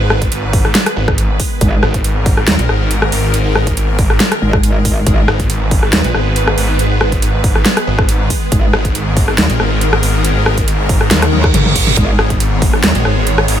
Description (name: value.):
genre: heavy wobble dubstep.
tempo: 139 BPM.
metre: 4/4.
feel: swing 53% on 16ths, half-time.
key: G# minor.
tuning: A4 = 440 Hz.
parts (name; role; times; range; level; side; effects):
evolving wavetable pad; sustained chords; 0.0-13.6 s; D#3 to C#5; -19 LUFS; equal; ensemble chorus, built-in reverb, sidechain pumping.
snarling distorted saw bass; bass; 0.0-13.6 s; G#1 to A#1; -15 LUFS; equal; overdrive.
big-room dance drum kit; drums; 0.1-13.6 s; hi-hat, rim click, snare drum, toms; -16 LUFS; equal; none.
electronic kick drum; drums; 0.2-12.7 s; none; -16 LUFS; equal; none.
metallic wobble bass; bass; 1.6-12.9 s; G#1 to D#2; -14 LUFS; equal; chorus, overdrive.
reverse cymbal; sound effects; 11.3-12.0 s; none; -18 LUFS; right 6 dB; none.
room: digital ambience.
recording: none.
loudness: -11 LUFS.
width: side -10 dB against mid.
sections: 0.0-13.6 A section.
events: reverse cymbal 11.3-12.0; drum fill 11.3-12.0.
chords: 0.0 G#m.